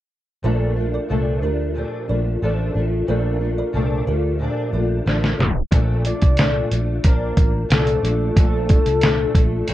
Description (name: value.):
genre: indie pop, bedroom pop.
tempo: 91 BPM.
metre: 4/4.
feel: straight.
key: Bb major.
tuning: A4 = 439 Hz.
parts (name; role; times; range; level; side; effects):
kalimba; second line; 0.4-4.9 s; F4 to D5; -29 LUFS; right 6 dB; ensemble chorus, tape echo.
fingerpicked steel-string acoustic guitar; accompaniment; 0.4-9.7 s; Bb2 to D4; -24 LUFS; left 2 dB; ensemble chorus, warbly pitch drift.
vintage muted fingered electric bass; bass; 0.4-9.7 s; A1 to D2; -22 LUFS; equal; none.
lo-fi sampler-style drum kit; drums; 5.1-9.7 s; hi-hat, kick drum, snare drum; -17 LUFS; equal; none.
soft octave-layered synth lead; melody; 6.1-9.7 s; A4 to D5; -23 LUFS; left 2 dB; analog chorus, tape echo.
room: light reverb.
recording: cassette tape, tape stop.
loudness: -17 LUFS.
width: side -14 dB against mid.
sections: 0.4-5.7 A section; 5.7-9.7 B section.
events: drum fill 5.1-5.7; tape stop 5.4-5.7.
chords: 0.4 Bbmaj7.